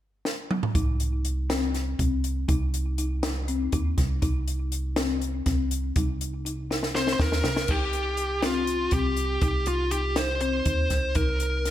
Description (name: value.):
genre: progressive instrumental, band music in an uneven meter.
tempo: 242 BPM (eighths).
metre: 7/8.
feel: straight.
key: C minor.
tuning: A4 = 444 Hz.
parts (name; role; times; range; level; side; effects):
compact cocktail drum kit; drums; 0.3-11.7 s; crash cymbal, hi-hat, kick drum, snare drum, toms; -28 LUFS; equal; none.
folk marimba with soft mallets; arpeggios; 0.8-11.4 s; C4 to Eb4; -32 LUFS; left 5 dB; digital delay.
plucky analog bass; bass; 0.8-11.7 s; C2 to Eb2; -28 LUFS; right 1 dB; none.
high-gain lead guitar; melody; 7.0-11.7 s; F4 to C5; -27 LUFS; equal; distortion.
room: light reverb, small room ambience.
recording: faint mains hum.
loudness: -24 LUFS.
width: side -12 dB against mid.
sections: 0.8-7.7 A section; 7.7-11.7 B section.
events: drum fill 0.3-0.8, 6.7-7.7.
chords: 0.0 N.C.; 0.8 Cm.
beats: 0.01 0.26 0.50 | 0.75 1.00 1.25 1.50 1.74 1.99 2.24 | 2.49 2.73 2.98 3.23 3.48 3.73 3.97 | 4.22 4.47 4.72 4.96 5.21 5.46 5.71 | 5.95 6.20 6.45 6.70 6.95 7.19 7.44 | 7.69 7.93 8.18 8.43 8.68 8.93 9.17 | 9.42 9.67 9.92 10.16 10.41 10.66 10.91 | 11.16 11.40 11.65.